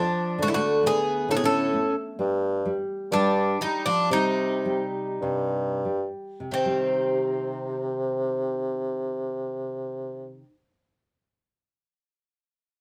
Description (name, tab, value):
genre	fado-style ballad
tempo	42-67 BPM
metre	2/4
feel	rubato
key	C minor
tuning	A4 = 440 Hz
part	Greek bouzouki	melody	0.0-10.5 s	C4 to A4	-29 LUFS	equal	none
part	picked twelve-string acoustic guitar	second line	0.0-10.4 s	Eb3 to D4	-32 LUFS	equal	none
part	nylon-string guitar	accompaniment	0.0-10.6 s	C3 to F4	-35 LUFS	equal	none
part	warm bassoon	bass	0.0-10.4 s	G2 to D3	-30 LUFS	equal	none
room	wet studio reverb, RT60 0.6 s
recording	rough home demo mix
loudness	-26 LUFS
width	mono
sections	0.0-6.5 A section; 6.5-12.1 B section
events	slowing down 2.2-6.5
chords	0.4 D5; 2.2 G5; 4.1 Cm